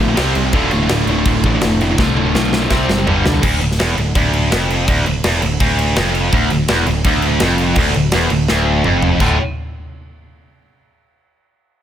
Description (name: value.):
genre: heavy metal.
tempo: 166 BPM.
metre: 4/4.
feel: straight.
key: D minor.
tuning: A4 = 441 Hz.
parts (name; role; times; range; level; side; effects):
distorted electric guitar; riff; 0.0-3.4, 6.3-9.4 s; D2 to F4; -18 LUFS; equal; overdrive.
heavy high-gain guitar; riff; 0.0-9.4 s; D2 to C4; -17 LUFS; equal; distortion.
modern bright picked electric bass; bass; 0.0-9.4 s; D1 to C2; -19 LUFS; equal; none.
tight metal drum kit; drums; 0.2-9.3 s; crash cymbal, kick drum, snare drum, toms; -19 LUFS; equal; none.
room: small room ambience.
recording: none.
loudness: -13 LUFS.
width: side -10 dB against mid.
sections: 0.0-3.4 A section; 3.4-9.2 B section; 9.2-10.7 C section.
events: drum fill 2.0-3.4, 8.5-9.2.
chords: 0.2 C5; 0.5 Dm; 2.7 C5; 3.1 G5; 3.4 Dm; 9.2 D5.